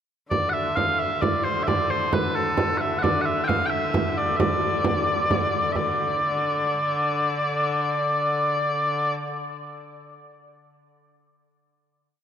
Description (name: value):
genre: medieval dance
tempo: 88 BPM (dotted quarters)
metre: 6/8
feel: straight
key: D minor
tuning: A4 = 440 Hz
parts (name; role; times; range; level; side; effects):
- mellow small bagpipes; melody; 0.3-9.1 s; A4 to G5; -23 LUFS; equal; none
- clear hurdy-gurdy; drone; 0.3-9.1 s; D3; -32 LUFS; left 2 dB; none
- frame drum; percussion; 0.3-6.0 s; none; -26 LUFS; right 2 dB; none
room: wet church reverb, RT60 3.5 s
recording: none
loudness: -21 LUFS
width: side -8 dB against mid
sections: 0.3-5.8 A section; 5.8-8.5 final note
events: none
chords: none